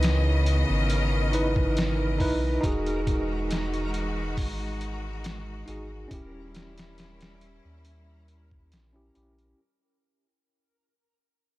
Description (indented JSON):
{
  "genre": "trip hop",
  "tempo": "69 BPM",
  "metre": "4/4",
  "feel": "straight",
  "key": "unclear",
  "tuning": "A4 = 440 Hz",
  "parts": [
    { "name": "bell-like tine electric piano", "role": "accompaniment", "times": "0.0-9.6 s", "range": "C#4 to B4", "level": "-31 LUFS", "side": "right 1 dB", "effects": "tremolo, vintage 12-bit sampler grit, low-pass filter, tape echo" },
    { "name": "clear symphonic string section", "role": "sustained chords", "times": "0.0-9.6 s", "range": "C#3 to D#5", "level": "-32 LUFS", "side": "left 1 dB", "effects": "none" },
    { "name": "soft dub sub bass", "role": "bass", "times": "0.0-9.5 s", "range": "D#1 to D#2", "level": "-28 LUFS", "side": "equal", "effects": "none" },
    { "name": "trip hop sampler-style drum kit", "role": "drums", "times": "0.0-9.6 s", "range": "hi-hat, kick drum, snare drum", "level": "-30 LUFS", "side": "equal", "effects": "none" },
    { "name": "backwards swelling texture", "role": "texture", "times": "0.0-9.6 s", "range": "A#4", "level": "-41 LUFS", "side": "right 1 dB", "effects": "built-in reverb" }
  ],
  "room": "little or no reverb",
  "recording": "vinyl crackle",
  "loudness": "-24 LUFS",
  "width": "side -17 dB against mid",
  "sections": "0.0-9.6 A section",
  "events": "fade-out 0.0-9.6; filter sweep on tine electric piano 0.0-9.6",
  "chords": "0.0 C#m9; 2.6 Emaj9; 6.1 D#7b9",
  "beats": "0.02 0.89 1.76 | 2.63 3.50 4.37 5.24 | 6.11 6.98 7.85 8.71"
}